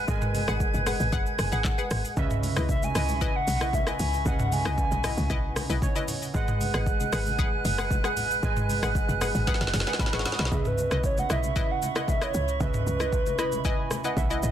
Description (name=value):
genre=amapiano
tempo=115 BPM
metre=4/4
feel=straight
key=C# minor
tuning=A4 = 440 Hz
part: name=warm analog keys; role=accompaniment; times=0.0-14.5 s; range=C#3 to D#6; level=-34 LUFS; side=right 4 dB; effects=chorus
part: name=mellow small flute group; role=sustained chords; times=0.0-14.4 s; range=B4 to G#6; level=-34 LUFS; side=right 4 dB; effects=none
part: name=woody log drum bass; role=bass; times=0.0-14.5 s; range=F#1 to C#2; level=-30 LUFS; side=equal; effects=none
part: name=afro-pop drum kit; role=drums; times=0.1-14.5 s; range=handclaps, hi-hat, kick drum, rim click, shaker, snare drum, toms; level=-28 LUFS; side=equal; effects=overdrive
part: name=congas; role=percussion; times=0.1-14.5 s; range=none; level=-36 LUFS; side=left 2 dB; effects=none
part: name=analog pluck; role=stabs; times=0.5-14.4 s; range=E4 to F#5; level=-34 LUFS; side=left 6 dB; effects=chorus, digital delay
part: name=hollow clarinet-like synth lead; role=melody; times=2.7-6.1, 10.5-14.1 s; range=G#4 to G#5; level=-30 LUFS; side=right 1 dB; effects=chorus, phaser, digital delay
room=little or no reverb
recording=dense, heavily limited modern master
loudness=-24 LUFS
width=side -10 dB against mid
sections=0.0-10.5 A section; 10.5-14.5 B section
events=drop 0.0-10.5; synth keys fill 1.1-2.2, 5.6-6.3, 13.1-14.5; drum fill 9.5-10.5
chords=0.0 G#m7; 2.2 C#m9; 6.3 G#m7; 10.5 C#m9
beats=| 0.08 0.60 1.13 1.65 | 2.17 2.69 3.21 3.73 | 4.26 4.78 5.30 5.82 | 6.34 6.87 7.39 7.91 | 8.43 8.95 9.47 10.00 | 10.52 11.04 11.56 12.08 | 12.61 13.13 13.65 14.17